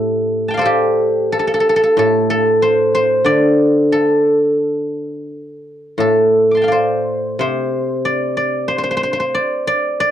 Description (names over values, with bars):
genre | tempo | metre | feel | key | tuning
chinese traditional, Chinese solo plucked strings | 90 BPM | 4/4 | uneven beats, rubato | D yu mode | A4 = 442 Hz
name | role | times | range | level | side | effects
guzheng | solo | 0.0-10.1 s | A2 to D6 | -14 LUFS | equal | none
room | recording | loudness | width
little or no reverb | dry, close 1970s-style studio recording | -13 LUFS | side -10 dB against mid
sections
0.0-10.1 A section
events
none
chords
none